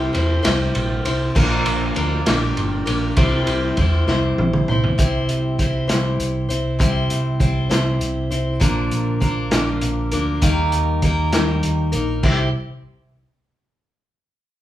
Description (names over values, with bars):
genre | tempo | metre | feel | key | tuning
folk rock and heartland rock | 66 BPM (dotted quarters) | 6/8 | straight | C mixolydian | A4 = 439 Hz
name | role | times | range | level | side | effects
picked steel-string acoustic guitar | accompaniment | 0.0-12.5 s | Bb2 to C5 | -22 LUFS | left 2 dB | none
picked electric bass | bass | 0.0-12.5 s | G1 to E2 | -22 LUFS | right 1 dB | none
vintage drum kit | drums | 0.1-12.4 s | crash cymbal, hi-hat, kick drum, ride cymbal, snare drum, toms | -21 LUFS | equal | none
room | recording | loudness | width
moderate large studio reverb, RT60 0.9 s | band playing live in one room | -17 LUFS | side -13 dB against mid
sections
0.0-5.0 A section; 5.0-12.2 B section; 12.2-14.0 C section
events
drum fill 4.1-5.0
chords
0.0 C; 1.4 Bb; 3.2 C; 8.6 Bb; 10.4 Eb; 12.2 C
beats
0.46 | 1.36 2.27 | 3.17 4.08 | 4.99 5.89 | 6.80 7.71 | 8.61 9.52 | 10.43 11.33 | 12.24